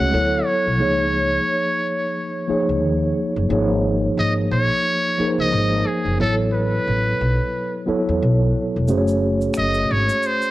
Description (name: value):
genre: R&B, neo-soul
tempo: 89 BPM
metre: 4/4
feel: swing 59% on 16ths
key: unclear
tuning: A4 = 439 Hz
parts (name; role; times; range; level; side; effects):
- trumpet with metal mute; melody; 0.0-10.5 s; Ab4 to Gb5; -22 LUFS; equal; none
- mellow tine electric piano; accompaniment; 0.0-10.5 s; F3 to Db5; -21 LUFS; equal; medium stereo tremolo
- upright bass; bass; 0.0-10.1 s; E1 to E2; -22 LUFS; equal; none
- egg shaker and finger snaps; percussion; 8.9-10.5 s; none; -36 LUFS; right 2 dB; none
room: moderate echo chamber reverb, RT60 1.7 s, studio reverb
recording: worn, warbling old tape, cassette tape, warbly pitch drift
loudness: -17 LUFS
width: side -16 dB against mid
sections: 0.0-3.5 A section; 3.5-10.5 A section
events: none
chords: 0.1 D69; 0.8 Db69; 3.5 Absus4; 6.2 Aadd9; 8.9 Gbmadd9